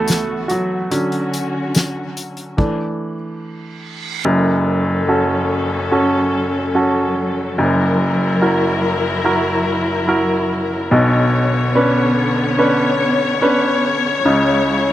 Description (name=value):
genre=pop ballad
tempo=72 BPM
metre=4/4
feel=straight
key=F# minor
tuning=A4 = 440 Hz
part: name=clear baby grand piano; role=accompaniment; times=0.0-14.9 s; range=F#1 to C#5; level=-16 LUFS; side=right 1 dB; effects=none
part: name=warm studio string section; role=sustained chords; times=0.0-14.9 s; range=C#2 to C#5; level=-20 LUFS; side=left 2 dB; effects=none
part: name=soft-mallet drum kit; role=drums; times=0.1-2.8 s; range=crash cymbal, hi-hat, kick drum, snare drum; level=-19 LUFS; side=equal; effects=none
part: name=tambourine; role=percussion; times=0.1-2.4 s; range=none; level=-29 LUFS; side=left 5 dB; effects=none
part: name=reverse cymbal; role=sound effects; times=3.6-4.3 s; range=none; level=-29 LUFS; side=right 8 dB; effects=none
room=little or no reverb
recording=recorded outdoors, with no room sound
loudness=-14 LUFS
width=side -13 dB against mid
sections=0.0-4.3 A section; 4.3-14.9 B section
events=grand piano solo 0.0-4.3; stop 2.6-4.3; reverse cymbal 3.6-4.3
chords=0.0 F#m7/C#; 0.9 Dmaj7; 2.6 E7sus4; 4.3 F#m; 7.6 F#7; 10.9 Bmadd9; 14.3 C#m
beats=0.09 | 0.92 1.75 2.58 3.42 | 4.25 5.08 5.92 6.75 | 7.58 8.42 9.25 10.09 | 10.92 11.75 12.59 13.42 | 14.25